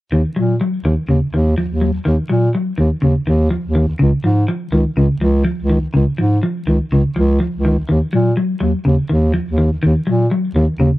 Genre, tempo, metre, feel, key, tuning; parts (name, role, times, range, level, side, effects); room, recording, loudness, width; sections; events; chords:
afrobeat; 124 BPM; 4/4; straight; Eb minor; A4 = 441 Hz
semi-hollow electric guitar; arpeggios; 0.1-11.0 s; Db3 to Gb3; -17 LUFS; left 1 dB
mellow bass clarinet; bass; 0.1-10.9 s; Db2 to Bb2; -15 LUFS; equal
small room ambience; dry, close 1970s-style studio recording; -14 LUFS; side -17 dB against mid
0.1-11.0 A section
0.1 Ebm; 4.0 Db; 7.9 Ebm